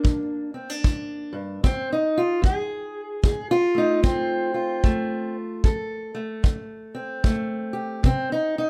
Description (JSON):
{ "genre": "acoustic country blues, solo or duo", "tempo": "75 BPM", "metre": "4/4", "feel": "swing 62% on 8ths", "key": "F major", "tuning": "A4 = 440 Hz", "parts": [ { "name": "fingerpicked steel-string acoustic guitar", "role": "melody", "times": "0.0-8.7 s", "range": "F2 to A4", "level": "-26 LUFS", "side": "equal", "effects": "none" }, { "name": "kick drum", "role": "drums", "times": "0.0-8.3 s", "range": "none", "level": "-22 LUFS", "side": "equal", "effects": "none" } ], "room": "little or no reverb", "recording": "close, detailed microphones", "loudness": "-24 LUFS", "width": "mono", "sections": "0.0-8.7 A section", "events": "none", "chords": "0.0 Bb; 1.6 F; 8.0 N.C.", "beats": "0.04 0.84 | 1.64 2.44 3.24 4.04 | 4.84 5.64 6.44 7.24 | 8.04" }